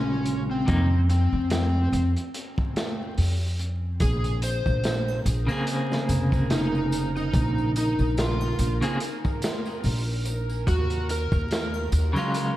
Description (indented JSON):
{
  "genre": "trip hop",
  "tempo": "72 BPM",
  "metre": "4/4",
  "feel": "swing 56% on 16ths",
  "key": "Bb minor",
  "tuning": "A4 = 440 Hz",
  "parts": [
    { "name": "overdriven slide guitar", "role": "melody", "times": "0.0-11.9 s", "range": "C4 to C5", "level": "-30 LUFS", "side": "equal", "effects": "analog chorus, tape echo" },
    { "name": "electric guitar at the edge of break-up", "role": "accompaniment", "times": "0.0-12.6 s", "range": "C3 to Ab4", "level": "-28 LUFS", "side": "equal", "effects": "tremolo, vintage 12-bit sampler grit" },
    { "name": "upright bass", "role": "bass", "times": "0.0-12.1 s", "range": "F1 to F2", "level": "-25 LUFS", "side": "equal", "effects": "none" },
    { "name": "crunchy breakbeat drum kit", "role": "drums", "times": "0.3-12.6 s", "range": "hi-hat, kick drum, snare drum", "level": "-29 LUFS", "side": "equal", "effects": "none" },
    { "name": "tambourine and triangle", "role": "percussion", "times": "4.0-12.5 s", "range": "none", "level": "-45 LUFS", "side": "right 2 dB", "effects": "none" },
    { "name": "bowed-like drone", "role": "texture", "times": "5.2-12.6 s", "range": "Bb4", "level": "-38 LUFS", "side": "right 2 dB", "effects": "built-in reverb, phaser" }
  ],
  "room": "moderate plate reverb, RT60 2.2 s",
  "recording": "dreamy mix soaked in reverb, vinyl crackle",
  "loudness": "-22 LUFS",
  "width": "side -14 dB against mid",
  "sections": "0.0-12.6 A section",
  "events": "none",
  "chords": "0.0 Ebm11 (rootless); 0.7 F5; 4.0 Bbm9; 10.7 Ebm11",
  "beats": "| 0.67 1.51 2.34 3.17 | 4.01 4.84 5.67 6.51 | 7.34 8.17 9.01 9.84 | 10.67 11.51 12.34"
}